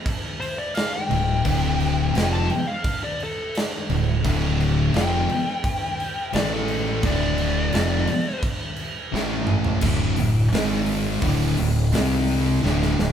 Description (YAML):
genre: stoner and doom metal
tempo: 86 BPM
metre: 4/4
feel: straight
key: D minor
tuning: A4 = 441 Hz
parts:
  - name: big rock drum kit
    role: drums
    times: 0.1-13.1 s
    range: crash cymbal, hi-hat, kick drum, snare drum, toms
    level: -26 LUFS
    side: right 1 dB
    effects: none
  - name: fuzz lead guitar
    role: melody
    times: 0.4-8.4 s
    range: A4 to A5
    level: -27 LUFS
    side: left 2 dB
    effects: distortion
  - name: sludgy distorted guitar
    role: riff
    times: 1.1-13.1 s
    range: D2 to C4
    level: -30 LUFS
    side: right 1 dB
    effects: overdrive
  - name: thick fuzz guitar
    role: riff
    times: 1.1-13.1 s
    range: D2 to C4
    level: -25 LUFS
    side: left 6 dB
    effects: distortion
  - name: thick fuzz guitar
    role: riff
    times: 1.1-13.1 s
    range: D2 to C4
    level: -28 LUFS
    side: right 7 dB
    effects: distortion
  - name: growling fingered electric bass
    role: bass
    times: 1.1-13.1 s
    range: D1 to C2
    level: -25 LUFS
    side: right 1 dB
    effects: overdrive
room: moderate large studio reverb, RT60 1.5 s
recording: band playing live in one room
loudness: -20 LUFS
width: side -9 dB against mid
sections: 0.0-9.8 A section; 9.8-13.1 B section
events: lead electric guitar solo 0.0-9.8; drum fill 9.1-9.8, 12.6-13.1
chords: 0.0 Dm; 6.3 A5; 7.0 Dm; 9.1 A5; 9.8 D5; 10.5 G#5; 11.2 D5; 11.9 C5